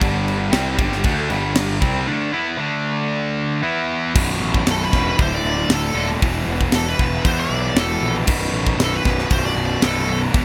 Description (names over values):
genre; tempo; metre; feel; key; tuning
heavy metal; 116 BPM; 4/4; straight; B phrygian; A4 = 440 Hz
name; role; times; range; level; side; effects
distorted electric guitar; riff; 0.0-10.4 s; B1 to E4; -23 LUFS; equal; overdrive
fuzz picked electric bass; bass; 0.0-10.4 s; B0 to E2; -26 LUFS; equal; overdrive
tight metal drum kit; drums; 0.0-10.4 s; crash cymbal, hi-hat, kick drum, snare drum; -24 LUFS; equal; none
high-gain lead guitar; melody; 4.7-10.2 s; A4 to D5; -26 LUFS; equal; distortion
room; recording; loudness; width
little or no reverb; none; -20 LUFS; mono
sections
0.0-4.2 A section; 4.2-10.4 B section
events
break 2.1-4.2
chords
0.0 G5; 2.6 D5; 3.6 E5; 4.2 B5; 5.2 D5; 6.2 E5; 8.3 B5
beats
| 0.01 0.53 1.05 1.57 | 2.08 2.60 3.12 3.64 | 4.15 4.67 5.19 5.71 | 6.22 6.74 7.25 7.77 | 8.29 8.80 9.32 9.83 | 10.35